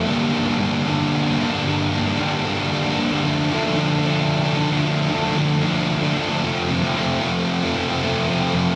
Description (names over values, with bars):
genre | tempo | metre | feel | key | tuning
rock | 113 BPM | 3/4 | straight | G minor | A4 = 443 Hz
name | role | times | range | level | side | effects
sludgy distorted guitar | solo | 0.0-8.8 s | F2 to D4 | -20 LUFS | equal | overdrive, diffuse ambient delay
room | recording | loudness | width
wet cathedral reverb, RT60 6.1 s | dreamy mix soaked in reverb | -20 LUFS | mono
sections
0.1-8.8 A section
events
none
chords
0.1 Gm; 3.2 Dm; 6.4 F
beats
| 0.07 0.60 1.13 | 1.66 2.19 2.72 | 3.25 3.78 4.31 | 4.84 5.37 5.90 | 6.43 6.96 7.49 | 8.02 8.54